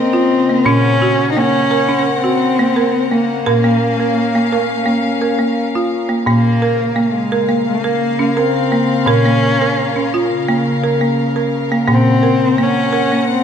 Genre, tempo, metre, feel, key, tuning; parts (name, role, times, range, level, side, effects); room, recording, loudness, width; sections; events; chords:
world meditative, meditative tuned percussion; 86 BPM; 4/4; straight; Bb minor; A4 = 440 Hz
dark cello; melody; 0.0-13.4 s; Ab3 to Eb4; -17 LUFS; left 2 dB; ping-pong delay
warm chamber string section; sustained chords; 0.0-13.4 s; Db3 to Gb5; -20 LUFS; left 2 dB
folk marimba with hard mallets; arpeggios; 0.0-13.4 s; Bb2 to Bb4; -16 LUFS; right 2 dB
wet scoring stage reverb, RT60 1.8 s; -12 LUFS; side -8 dB against mid
0.0-6.3 A section; 6.3-13.4 B section
0.0 Bbm; 0.7 Gb/Bb; 3.5 Bbm; 11.9 Gb/Bb